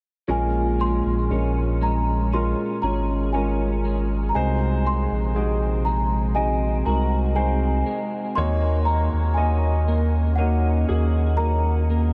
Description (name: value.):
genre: pop.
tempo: 60 BPM.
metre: 4/4.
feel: straight.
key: Bb minor.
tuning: A4 = 440 Hz.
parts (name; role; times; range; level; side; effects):
small celesta; melody; 0.3-12.1 s; Gb5 to C6; -30 LUFS; equal; subtle chorus.
clear baby grand piano; accompaniment; 0.3-12.1 s; Bb2 to Eb5; -29 LUFS; equal; none.
twelve-string electric guitar; arpeggios; 0.3-12.1 s; Bb2 to Ab4; -32 LUFS; equal; ensemble chorus, delay.
warm sub bass; bass; 0.3-12.1 s; Ab1 to Eb2; -24 LUFS; equal; none.
room: moderate huge ambient reverb, RT60 8.4 s.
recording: dreamy mix soaked in reverb.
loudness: -22 LUFS.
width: mono.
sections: 0.3-12.1 A section.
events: none.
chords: 0.3 Bbm7; 4.4 Ab7; 8.4 Ebm7.